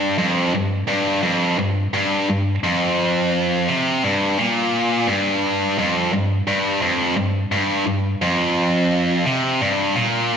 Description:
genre	rock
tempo	86 BPM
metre	4/4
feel	straight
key	unclear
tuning	A4 = 440 Hz
part	tight distorted guitar	solo	0.0-10.4 s	F2 to C3	-17 LUFS	equal	distortion, slapback echo
room	wet scoring stage reverb, RT60 1.8 s, digital ambience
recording	big arena sound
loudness	-17 LUFS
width	side -7 dB against mid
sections	0.0-10.4 A section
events	none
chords	none

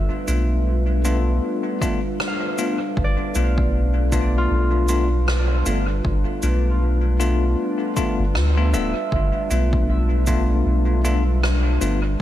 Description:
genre	ambient dub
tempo	78 BPM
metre	4/4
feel	swing 58% on 16ths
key	G mixolydian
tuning	A4 = 440 Hz
part	warbly tape-like pad	sustained chords	0.0-12.2 s	G3 to B4	-28 LUFS	equal	chorus, built-in reverb
part	Celtic harp	arpeggios	0.0-11.1 s	F4 to F5	-31 LUFS	right 3 dB	low-pass filter, dub echo
part	soft dub sub bass	bass	0.0-12.2 s	D1 to D2	-19 LUFS	equal	none
part	bell-like tine electric piano	stabs	0.3-12.0 s	A3 to F4	-25 LUFS	left 3 dB	fast stereo tremolo, dub echo
part	cabasa and rim click	drums	0.3-12.0 s	none	-30 LUFS	equal	studio reverb, dub echo
part	electronic kick drum	drums	1.8-10.5 s	none	-25 LUFS	equal	overdrive, studio reverb
room	small room ambience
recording	lossy compression artefacts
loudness	-18 LUFS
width	side -12 dB against mid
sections	0.0-12.2 A section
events	filter sweep on harp 0.0-12.2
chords	0.0 G7

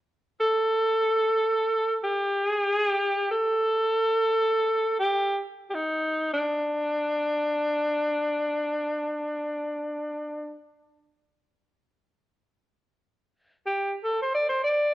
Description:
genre	japanese traditional, Japanese chamber music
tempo	free time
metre	none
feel	none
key	D in sen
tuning	A4 = 444 Hz
part	bright alto saxophone	solo	0.4-14.9 s	D4 to D5	-24 LUFS	equal	none
room	moderate recital hall reverb, RT60 1.5 s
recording	worn, warbling old tape, cassette tape, warbly pitch drift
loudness	-24 LUFS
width	side -15 dB against mid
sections	0.0-14.9 A section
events	none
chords	none

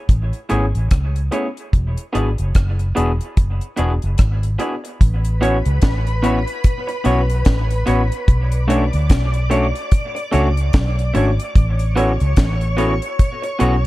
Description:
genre	lovers rock reggae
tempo	73 BPM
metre	4/4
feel	swing 59% on 16ths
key	A major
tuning	A4 = 440 Hz
part	vintage muted fingered electric bass	bass	0.1-13.9 s	E1 to D2	-18 LUFS	equal	none
part	deep reggae drum kit	drums	0.1-13.9 s	hi-hat, kick drum, rim click, snare drum	-16 LUFS	equal	none
part	overdriven tine electric piano	accompaniment	0.5-13.8 s	A3 to G#4	-23 LUFS	left 2 dB	none
part	electric guitar through a small old amp	stabs	0.5-13.8 s	A3 to D5	-25 LUFS	right 2 dB	tremolo, dub echo
part	soft string machine	second line	5.2-13.9 s	B4 to D6	-27 LUFS	left 1 dB	ensemble chorus
room	studio ambience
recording	none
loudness	-15 LUFS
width	side -17 dB against mid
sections	0.0-5.0 A section; 5.0-13.9 B section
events	none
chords	0.0 Amaj7; 1.7 E7; 5.0 A69; 8.3 Bm9; 11.6 A69

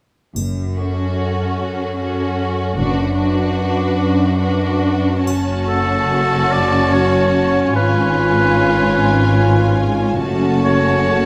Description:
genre	classical, slow romantic movement for symphony orchestra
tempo	49 BPM (dotted quarters)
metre	6/8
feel	rubato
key	F# minor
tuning	A4 = 440 Hz
part	rich studio double bass section	bass	0.3-11.3 s	F#1 to G#1	-23 LUFS	equal	none
part	rich studio cello section	bass	0.4-11.3 s	F#2 to G#2	-22 LUFS	equal	none
part	triangle	percussion	0.4-6.9 s	none	-37 LUFS	equal	none
part	warm studio violin section	melody	0.8-11.3 s	A4 to A5	-29 LUFS	equal	none
part	rich studio violin section	second line	0.8-11.3 s	E#4 to F#4	-27 LUFS	equal	none
part	warm studio viola section	accompaniment	0.8-11.3 s	C#4 to D4	-25 LUFS	equal	none
part	dark French horn section	sustained chords	5.3-11.3 s	A3 to F#4	-23 LUFS	equal	none
part	warm oboe	second line	5.7-11.3 s	A4 to D5	-21 LUFS	equal	none
room	moderate scoring stage reverb, RT60 1.6 s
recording	none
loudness	-17 LUFS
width	mono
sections	0.3-5.3 A section; 5.3-11.3 B section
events	none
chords	0.3 F#m; 2.8 Bm/F#; 5.3 F#m; 7.8 C#7/G#; 10.2 F#m

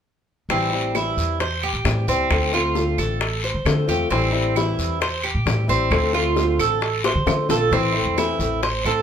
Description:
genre	latin, Cuban son and guajira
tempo	133 BPM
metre	4/4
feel	straight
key	A minor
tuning	A4 = 440 Hz
part	fingerpicked acoustic archtop guitar	accompaniment	0.5-9.0 s	D3 to F4	-25 LUFS	left 5 dB	none
part	Cuban tres	arpeggios	0.5-9.0 s	C4 to C5	-22 LUFS	right 4 dB	none
part	upright bass	bass	0.5-9.0 s	A1 to D3	-24 LUFS	equal	none
part	bongos	percussion	0.5-8.9 s	none	-26 LUFS	left 6 dB	none
part	guiro	percussion	0.5-9.0 s	none	-30 LUFS	left 4 dB	none
part	claves	percussion	0.9-9.0 s	none	-30 LUFS	right 6 dB	none
room	moderate studio reverb, RT60 0.5 s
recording	minimal, uncompressed stereo recording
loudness	-18 LUFS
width	side -8 dB against mid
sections	0.5-7.7 A section; 7.7-9.0 B section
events	drum fill 7.0-7.7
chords	0.5 Am7; 2.3 Dm7; 4.1 Am7; 5.9 Dm7; 7.7 Am

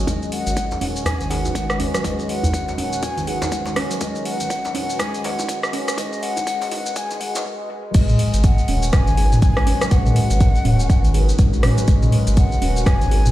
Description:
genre	afro house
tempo	122 BPM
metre	4/4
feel	swing 59% on 16ths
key	G# minor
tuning	A4 = 440 Hz
part	ethereal airy pad	sustained chords	0.0-13.3 s	F#4 to B4	-32 LUFS	right 1 dB	ensemble chorus, built-in reverb, vintage 12-bit sampler grit, sidechain pumping
part	handpan	arpeggios	0.0-13.2 s	D#3 to G#4	-26 LUFS	equal	sidechain pumping, low-pass filter, dub echo
part	round analog bass	bass	0.0-13.3 s	D#1 to G#1	-21 LUFS	equal	sidechain pumping
part	breathy concert flute	melody	0.1-13.3 s	D#5 to G#5	-27 LUFS	left 2 dB	dub echo
part	afro-pop drum kit	drums	0.1-13.3 s	crash cymbal, hi-hat, rim click, shaker, toms	-23 LUFS	equal	overdrive, high-pass filter on perc, high-pass filter on hats, high-pass filter on toms, high-pass filter on snare, high-pass filter on cymbals, high-pass filter on room
part	electronic kick drum	drums	0.1-13.0 s	none	-16 LUFS	equal	high-pass filter on kick
part	djembe	percussion	0.1-7.4 s	none	-28 LUFS	equal	none
room	digital ambience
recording	played on a big sound system in a bare room, large studio reverb, high-pass filter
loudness	-17 LUFS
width	side -15 dB against mid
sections	0.1-7.9 A section; 7.9-13.3 B section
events	build-up 0.1-7.9; filter sweep on handpan 0.1-7.9; filter sweep on ambient pad 0.1-7.9; filter sweep 0.1-7.9; break 7.5-7.9; drop 7.9-13.3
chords	0.1 G#m9

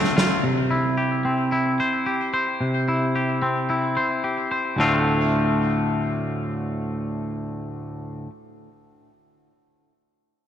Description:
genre	rock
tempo	111 BPM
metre	4/4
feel	straight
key	D minor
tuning	A4 = 438 Hz
part	twangy electric guitar	arpeggios	0.0-8.3 s	D2 to C5	-21 LUFS	equal	tape echo
room	moderate lush hall reverb, RT60 1.8 s, small room ambience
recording	dark, warm production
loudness	-20 LUFS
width	side -9 dB against mid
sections	0.0-4.8 A section; 4.8-9.1 B section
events	none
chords	0.4 C; 4.8 Dm7

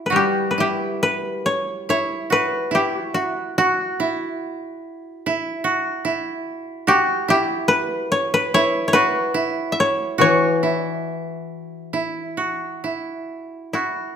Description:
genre	japanese traditional, Japanese chamber music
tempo	64-75 BPM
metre	4/4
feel	rubato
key	E kumoi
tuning	A4 = 440 Hz
part	koto	second line	0.0-14.2 s	E4 to F#4	-23 LUFS	right 2 dB	none
part	koto	melody	0.1-14.2 s	E4 to E5	-20 LUFS	left 1 dB	none
part	koto	accompaniment	0.1-2.7, 10.2-12.8 s	E3 to G3	-24 LUFS	left 5 dB	none
room	moderate recital hall reverb, RT60 1.5 s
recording	none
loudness	-18 LUFS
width	side -8 dB against mid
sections	0.1-13.7 A section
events	none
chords	none

